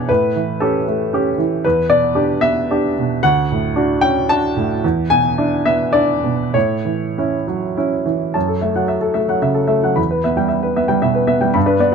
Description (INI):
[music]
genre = neoclassical minimalist piano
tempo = 94-117 BPM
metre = 3/4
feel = rubato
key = E dorian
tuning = A4 = 438 Hz
[part]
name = clear baby grand piano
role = solo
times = 0.0-11.9 s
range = D2 to B5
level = -14 LUFS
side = equal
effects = none
[sound]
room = light reverb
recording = dark, warm production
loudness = -15 LUFS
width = side -6 dB against mid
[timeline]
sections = 0.0-8.3 A section; 8.3-11.9 B section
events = none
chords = 0.1 A7; 1.6 Em7; 3.2 Dmaj7; 4.8 E7; 6.5 A6; 8.3 F#m7; 10.0 Em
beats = | 0.09 0.61 1.13 | 1.64 2.15 2.69 | 3.22 3.75 4.28 | 4.83 5.37 5.93 | 6.54 7.17 7.77 | 8.35 8.90 9.44 | 9.98 10.51 11.04 | 11.56